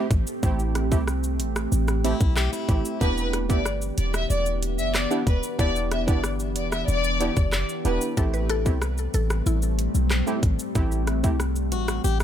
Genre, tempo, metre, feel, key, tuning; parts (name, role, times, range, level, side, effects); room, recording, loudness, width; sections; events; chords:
dancehall; 93 BPM; 4/4; straight; A4 = 436 Hz
mallet-like synth pluck; second line; 0.0-0.7, 8.2-10.7 s; E4 to B4; -33 LUFS; left 5 dB; chorus, ping-pong delay
synth brass stab; accompaniment; 0.0-11.4 s; A3 to G4; -29 LUFS; right 4 dB; chorus
deep dark ambient pad; sustained chords; 0.0-12.2 s; E3 to F#5; -30 LUFS; equal; chorus, built-in reverb, sidechain pumping
warm 808-style bass; bass; 0.1-12.2 s; E1 to C2; -25 LUFS; equal
island pop drum kit; drums; 0.1-12.2 s; handclaps, hi-hat, kick drum, rim click, shaker; -26 LUFS; equal
picked plugged-in swing-style acoustic guitar; arpeggios; 2.0-3.0, 11.7-12.2 s; E4 to G4; -31 LUFS; left 10 dB
warm studio violin section; melody; 3.0-8.0 s; B4 to E5; -28 LUFS; left 2 dB; ping-pong delay
little or no reverb; -22 LUFS; side -10 dB against mid
0.0-12.2 A section
0.0 Am7; 3.0 Em7; 8.2 Am7